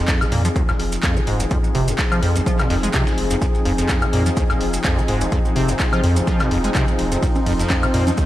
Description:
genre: acid house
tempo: 126 BPM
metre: 4/4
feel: swing 55% on 16ths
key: F minor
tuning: A4 = 440 Hz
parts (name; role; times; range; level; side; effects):
- warm analog pad; sustained chords; 0.0-8.3 s; F3 to C5; -23 LUFS; left 1 dB; chorus, sidechain pumping
- acid bass, square; riff; 0.0-8.2 s; F1 to Ab3; -22 LUFS; equal; analog chorus, analog delay
- warm sub bass; bass; 0.0-8.1 s; Eb1 to F2; -23 LUFS; equal; sidechain pumping
- dusty soul sampler-style drum kit; drums; 0.1-8.3 s; hi-hat, snare drum; -37 LUFS; equal; none
- electronic kick drum; drums; 0.1-8.3 s; none; -21 LUFS; equal; none
- punchy analog drum machine; drums; 0.1-8.3 s; congas, handclaps, hi-hat, ride cymbal, woodblock; -26 LUFS; left 1 dB; none
- maracas; percussion; 0.1-8.3 s; none; -34 LUFS; right 4 dB; none
room: moderate lush hall reverb, RT60 1.8 s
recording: dreamy mix soaked in reverb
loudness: -16 LUFS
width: side -14 dB against mid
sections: 0.0-8.3 A section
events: none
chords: 0.0 Fm7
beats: 0.08 0.56 1.03 | 1.51 1.99 2.46 2.94 | 3.42 3.89 4.37 4.84 | 5.32 5.80 6.27 6.75 | 7.22 7.70 8.18

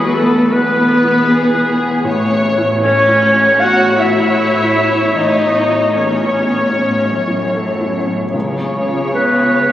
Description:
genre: cinematic, emotional film score for orchestra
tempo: 77 BPM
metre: 4/4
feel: rubato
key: unclear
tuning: A4 = 438 Hz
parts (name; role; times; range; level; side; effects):
- muted studio violin section; melody; 0.0-9.7 s; G#4 to C#5; -19 LUFS; left 1 dB; none
- muted studio violin section; second line; 0.0-9.7 s; G#4 to F#5; -24 LUFS; left 2 dB; none
- warm clarinet; second line; 0.0-9.7 s; G#4 to F#5; -16 LUFS; equal; none
- felt-muted upright piano; accompaniment; 0.0-9.7 s; A1 to A4; -22 LUFS; left 1 dB; none
- muted symphonic viola section; accompaniment; 0.0-9.7 s; G#3 to F#4; -18 LUFS; equal; none
- mellow French horn section; sustained chords; 0.0-9.7 s; G#3 to F#4; -25 LUFS; left 2 dB; none
- muted symphonic cello section; bass; 0.0-9.7 s; E2 to C#3; -20 LUFS; equal; none
- muted symphonic double bass section; bass; 0.0-9.7 s; E1 to C#2; -24 LUFS; equal; none
room: wet church reverb, RT60 3.5 s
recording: recorded on a phone in the room, club reverb, compression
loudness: -11 LUFS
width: side -12 dB against mid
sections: 0.0-9.7 A section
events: none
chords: 0.0 E; 2.1 A; 8.3 C#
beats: 0.53 1.29 | 2.06 2.83 3.60 4.37 | 5.16 5.96 6.75 7.55 | 8.34 9.13

